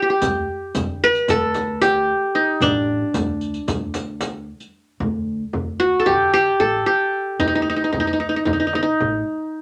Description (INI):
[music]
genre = Turkish makam ensemble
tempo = 226 BPM (eighths)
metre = 9/8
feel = straight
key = D makam hicaz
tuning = A4 = 440 Hz
[part]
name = qanun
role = melody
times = 0.0-9.6 s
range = D4 to B4-40c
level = -20 LUFS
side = equal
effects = none
[part]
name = upright bass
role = bass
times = 0.2-9.2 s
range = A1 to D3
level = -31 LUFS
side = equal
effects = none
[part]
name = darbuka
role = percussion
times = 0.2-9.1 s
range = none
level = -34 LUFS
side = equal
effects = none
[part]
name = frame drum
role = percussion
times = 0.2-9.1 s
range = none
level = -32 LUFS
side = equal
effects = none
[part]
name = riq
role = percussion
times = 0.2-4.7 s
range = none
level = -32 LUFS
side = equal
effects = none
[sound]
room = moderate studio ambience, RT60 0.5 s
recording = none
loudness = -20 LUFS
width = mono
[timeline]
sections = 0.0-5.0 A section; 5.0-9.6 B section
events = none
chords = none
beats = | 0.22 0.48 0.75 1.01 1.28 1.55 1.81 2.08 2.34 | 2.61 2.88 3.14 3.41 3.67 3.94 4.21 4.47 4.74 | 5.00 5.27 5.54 5.80 6.07 6.33 6.60 6.87 7.13 | 7.40 7.67 7.93 8.20 8.46 8.73 9.00 9.26 9.53